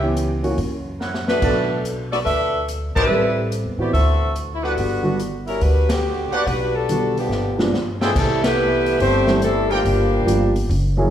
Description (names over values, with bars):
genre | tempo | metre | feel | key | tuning
jazz, big band swing | 142 BPM | 4/4 | swing 67% on 8ths | G major | A4 = 439 Hz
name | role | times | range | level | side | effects
warm saxophone section | melody | 0.0-10.6 s | D3 to E5 | -21 LUFS | left 1 dB | none
dark grand piano | accompaniment | 0.0-11.1 s | D3 to B4 | -24 LUFS | right 1 dB | none
upright bass | bass | 0.0-11.1 s | F#1 to A2 | -23 LUFS | equal | none
swinging big-band drum kit | drums | 0.2-10.8 s | crash cymbal, hi-hat, kick drum, ride cymbal, snare drum | -27 LUFS | left 1 dB | none
warm trumpet section | stabs | 1.0-9.8 s | D4 to A5 | -28 LUFS | right 2 dB | none
mellow trombone section | second line | 7.2-10.6 s | A2 to C4 | -26 LUFS | right 4 dB | none
room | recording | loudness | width
wet recital hall reverb, RT60 1.4 s | recorded in a church or concert hall | -17 LUFS | side -10 dB against mid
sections
0.0-8.2 A section; 8.2-11.1 B section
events
drum fill 1.0-1.4, 7.3-8.2; band accent 2.9, 5.8, 8.4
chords
0.0 C#m7b5; 0.6 F#7; 1.4 Bm7; 3.1 Am9; 3.9 D9; 4.8 Gmaj7; 7.3 G7b9; 8.2 C6; 9.8 Gm7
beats
0.15 0.57 0.99 | 1.41 1.83 2.25 2.68 | 3.10 3.52 3.94 4.36 | 4.78 5.20 5.62 6.04 | 6.46 6.88 7.31 7.73 | 8.15 8.57 8.99 9.42 | 9.84 10.26 10.69